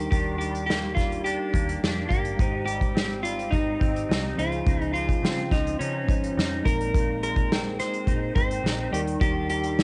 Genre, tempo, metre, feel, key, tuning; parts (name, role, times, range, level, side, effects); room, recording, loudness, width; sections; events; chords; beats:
indie pop, bedroom pop; 106 BPM; 4/4; straight; Eb major; A4 = 436 Hz
clean electric guitar; melody; 0.0-9.8 s; Db4 to C5; -31 LUFS; equal; subtle chorus, cassette tape, tape echo
bell-like tine electric piano; accompaniment; 0.0-9.8 s; F3 to D5; -36 LUFS; equal; cassette tape
electric guitar through a small old amp; accompaniment; 0.0-9.8 s; Ab2 to Eb4; -36 LUFS; equal; ensemble chorus, warbly pitch drift, cassette tape
vintage muted picked electric bass; bass; 0.0-9.8 s; G1 to Db3; -35 LUFS; equal
unplugged drum kit; drums; 0.1-9.8 s; hi-hat, kick drum, snare drum; -28 LUFS; equal; cassette tape
small room ambience; home recording on cassette, nothing above 10.4 kHz; -25 LUFS; mono
0.0-9.8 A section
0.0 Ebmaj7; 2.4 Abmaj7; 4.4 Dbmaj9; 6.7 Bb9sus4; 8.9 Ebmaj7
| 0.12 0.69 1.25 1.82 | 2.39 2.96 3.53 4.10 | 4.67 5.24 5.80 6.37 | 6.94 7.51 8.08 8.65 | 9.21 9.78